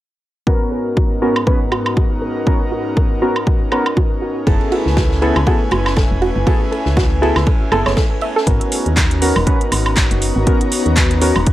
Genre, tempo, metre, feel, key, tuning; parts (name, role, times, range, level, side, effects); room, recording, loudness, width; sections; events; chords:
deep house; 120 BPM; 4/4; swing 57% on 16ths; G# minor; A4 = 443 Hz
airy breathy pad; sustained chords; 0.5-11.5 s; G#2 to G#5; -22 LUFS; left 1 dB; chorus, vintage 12-bit sampler grit, sidechain pumping
soft round pluck; arpeggios; 0.5-8.4 s; F#4 to E5; -23 LUFS; right 3 dB; chorus, sidechain pumping, analog delay
warm analog keys; stabs; 0.5-11.3 s; B3 to B4; -20 LUFS; equal; chorus, sidechain pumping, low-pass filter, analog delay
electronic kick drum; drums; 0.5-11.5 s; -16 LUFS; equal
house drum kit; drums; 1.4-11.5 s; handclaps, hi-hat, woodblock; -20 LUFS; right 1 dB
woody FM bass; bass; 4.5-11.5 s; D#1 to D#2; -18 LUFS; equal; sidechain pumping
unplugged drum kit; drums; 4.5-8.5 s; ride cymbal, snare drum; -30 LUFS; right 1 dB; sidechain pumping on cymbals, high-pass filter on cymbals, high-pass filter on snare, high-pass filter on room
granular cloud pad; texture; 9.7-11.5 s; B3 to A#5; -26 LUFS; left 1 dB; built-in reverb, sidechain pumping
light reverb, digital ambience; cassette tape; -13 LUFS; side -14 dB against mid
0.5-8.5 A section; 8.5-11.5 B section
filter sweep on synth arpeggio sound 0.5-8.5; filter sweep on synth keys 8.5-11.5
0.5 G#m11; 4.5 F#m11; 8.5 G#m11